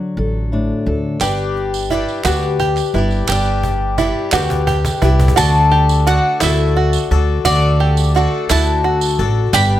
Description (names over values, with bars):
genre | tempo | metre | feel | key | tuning
indie folk with a building arrangement | 58 BPM (dotted quarters) | 6/8 | straight | unclear | A4 = 439 Hz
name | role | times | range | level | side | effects
fingerpicked steel-string acoustic guitar | accompaniment | 0.0-1.2 s | A2 to A4 | -20 LUFS | left 2 dB | none
upright bass | bass | 0.2-9.8 s | G1 to D2 | -16 LUFS | equal | none
picked twelve-string acoustic guitar | accompaniment | 1.2-9.8 s | D3 to B4 | -20 LUFS | left 7 dB | none
open-back banjo | arpeggios | 1.2-9.8 s | E4 to G4 | -20 LUFS | right 7 dB | none
cajon | drums | 1.2-9.7 s | none | -24 LUFS | right 1 dB | none
group handclap | percussion | 1.2-4.6 s | none | -24 LUFS | right 5 dB | none
tambourine | percussion | 1.2-9.7 s | none | -27 LUFS | right 12 dB | none
bowl-back mandolin | melody | 5.4-9.8 s | D5 to B5 | -18 LUFS | left 2 dB | slapback echo
room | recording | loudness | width
light reverb | none | -13 LUFS | side -12 dB against mid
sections
0.0-5.4 A section; 5.4-9.8 B section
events
build-up 0.0-5.4; drum fill 1.2-5.4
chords
0.0 D; 1.2 G; 5.4 D